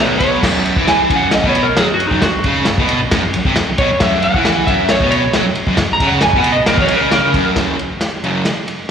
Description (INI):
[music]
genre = garage rock duo or trio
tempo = 134 BPM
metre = 4/4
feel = straight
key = F# major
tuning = A4 = 441 Hz
[part]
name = electric slide guitar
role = melody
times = 0.0-7.6 s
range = D#4 to A#5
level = -16 LUFS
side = equal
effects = slapback echo
[part]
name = fuzz guitar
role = riff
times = 0.0-8.4 s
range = E2 to B3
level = -16 LUFS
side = equal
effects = distortion, slapback echo
[part]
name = vintage drum kit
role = drums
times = 0.2-8.8 s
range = crash cymbal, kick drum, ride cymbal, snare drum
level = -17 LUFS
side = equal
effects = none
[sound]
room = light reverb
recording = live gig heard through the venue's PA, recital hall reverb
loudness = -12 LUFS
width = side -7 dB against mid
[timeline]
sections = 0.4-7.6 A section; 7.6-8.9 B section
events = electric slide guitar solo 0.4-7.6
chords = 0.4 F#5